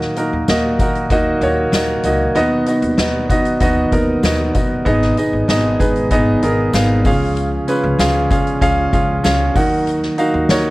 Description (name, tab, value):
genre	piano-driven pop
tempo	96 BPM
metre	4/4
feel	straight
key	Eb minor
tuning	A4 = 440 Hz
part	warm baby grand piano	accompaniment	0.0-10.7 s	Ab2 to Gb5	-16 LUFS	right 1 dB	none
part	mellow tonewheel organ	sustained chords	0.0-10.7 s	Bb2 to Bb4	-26 LUFS	left 1 dB	slow rotary speaker
part	upright bass	bass	0.0-10.7 s	F#1 to Eb3	-21 LUFS	equal	none
part	soft-mallet drum kit	drums	0.0-10.6 s	hi-hat, kick drum, snare drum	-20 LUFS	equal	vintage 12-bit sampler grit
part	tambourine	percussion	0.2-10.6 s	none	-37 LUFS	left 4 dB	none
room	light reverb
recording	cassette tape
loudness	-13 LUFS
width	side -19 dB against mid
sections	0.0-10.7 A section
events	none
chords	0.0 Ebm; 2.4 B/D#; 4.9 Abm; 7.1 Db; 9.6 Ebm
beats	0.47 1.10 1.73 | 2.35 2.98 3.61 4.23 | 4.86 5.49 6.11 6.74 | 7.37 7.99 8.62 9.24 | 9.87 10.50